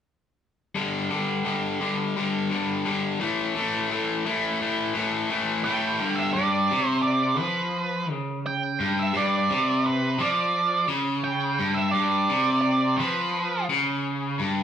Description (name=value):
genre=rock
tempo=86 BPM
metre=4/4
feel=straight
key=G major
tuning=A4 = 441 Hz
part: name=crunchy overdriven guitar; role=riff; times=0.7-14.6 s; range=G2 to A3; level=-24 LUFS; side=left 2 dB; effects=none
part: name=octave-fuzz lead guitar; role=melody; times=5.6-13.6 s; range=B4 to G5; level=-25 LUFS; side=right 4 dB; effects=distortion
room=wet large studio reverb, RT60 1.0 s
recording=band playing live in one room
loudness=-22 LUFS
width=side -8 dB against mid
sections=0.8-6.4 A section; 6.4-14.6 B section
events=none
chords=0.8 G5; 3.2 A5; 6.0 G5; 6.4 G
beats=| 0.76 1.46 2.16 2.86 | 3.56 4.26 4.96 5.66 | 6.36 7.06 7.76 8.46 | 9.16 9.86 10.55 11.25 | 11.95 12.65 13.35 14.04